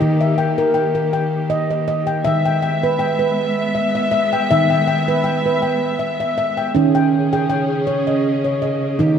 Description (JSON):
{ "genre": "world meditative, meditative tuned percussion", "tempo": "80 BPM", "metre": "3/4", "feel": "swing 54% on 16ths", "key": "unclear", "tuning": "A4 = 440 Hz", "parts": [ { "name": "warm studio string section", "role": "sustained chords", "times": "0.0-9.2 s", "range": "Db3 to E5", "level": "-21 LUFS", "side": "equal", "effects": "none" }, { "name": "handpan", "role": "arpeggios", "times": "0.0-9.2 s", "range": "Eb3 to G5", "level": "-17 LUFS", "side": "equal", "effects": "none" } ], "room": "wet scoring stage reverb, RT60 1.7 s, small room ambience", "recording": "none", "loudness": "-16 LUFS", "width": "side -7 dB against mid", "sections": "0.0-6.8 A section; 6.8-9.2 B section", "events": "none", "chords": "0.0 Eb; 2.3 E/Eb; 6.8 Db5" }